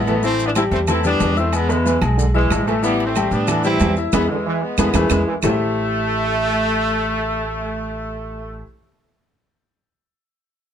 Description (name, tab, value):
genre	latin, salsa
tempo	184 BPM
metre	4/4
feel	straight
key	A minor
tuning	A4 = 440 Hz
part	clear horn section	melody	0.0-8.6 s	E3 to E4	-21 LUFS	equal	plate reverb
part	upright bass	bass	0.0-8.6 s	A1 to A2	-23 LUFS	right 1 dB	none
part	mellow trombone section	second line	0.1-5.5 s	A2 to E3	-25 LUFS	right 3 dB	none
part	bright upright piano	accompaniment	0.1-8.6 s	E3 to E6	-23 LUFS	left 3 dB	none
part	agogo bells and timbales	percussion	0.1-5.5 s	none	-27 LUFS	right 3 dB	none
part	congas	percussion	0.1-5.5 s	none	-26 LUFS	equal	none
part	maracas	percussion	0.1-5.5 s	none	-33 LUFS	left 6 dB	none
part	claves	percussion	0.6-5.5 s	none	-29 LUFS	right 8 dB	none
room	moderate small room reverb, RT60 0.5 s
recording	none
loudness	-16 LUFS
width	side -8 dB against mid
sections	0.0-5.4 A section; 5.4-8.0 B section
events	band accent 4.1-5.4; drum fill 4.9-5.4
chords	0.2 Am7; 1.5 E; 2.8 Am7; 4.1 E; 5.4 Am7